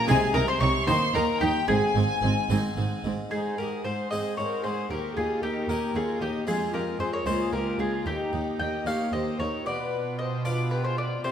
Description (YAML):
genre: classical, baroque-style concerto movement with solo episodes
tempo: 76 BPM (dotted quarters)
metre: 6/8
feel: straight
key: Ab major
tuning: A4 = 440 Hz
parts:
  - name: mandolin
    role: melody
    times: 0.0-11.3 s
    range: G4 to G5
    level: -29 LUFS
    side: left 2 dB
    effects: none
  - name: rich chamber violin section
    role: melody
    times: 0.0-11.3 s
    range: G5 to Eb6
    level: -36 LUFS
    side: left 2 dB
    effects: none
  - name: warm studio violin section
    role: second line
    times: 0.0-11.3 s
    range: Eb4 to Db6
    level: -34 LUFS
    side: left 3 dB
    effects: none
  - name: harpsichord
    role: accompaniment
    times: 0.0-11.3 s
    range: Db2 to Ab4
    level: -31 LUFS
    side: equal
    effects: none
  - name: warm chamber viola section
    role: accompaniment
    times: 0.1-11.3 s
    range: C4 to C5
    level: -36 LUFS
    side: right 2 dB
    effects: none
  - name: rich chamber double bass section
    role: bass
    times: 0.1-3.1 s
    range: Ab1 to Eb2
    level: -30 LUFS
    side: right 3 dB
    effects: none
  - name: warm chamber cello section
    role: bass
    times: 0.1-11.3 s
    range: Db2 to Eb3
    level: -31 LUFS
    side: right 3 dB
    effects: none
room: wet recital hall reverb, RT60 1.6 s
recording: none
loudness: -24 LUFS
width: side -8 dB against mid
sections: 0.0-3.3 A section; 3.3-11.3 B section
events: none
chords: 0.1 Ab/C; 0.9 Eb5; 1.7 Ab; 4.9 Eb7; 6.5 Fm; 7.3 Bbm7/Db; 8.1 Eb; 9.7 G7/B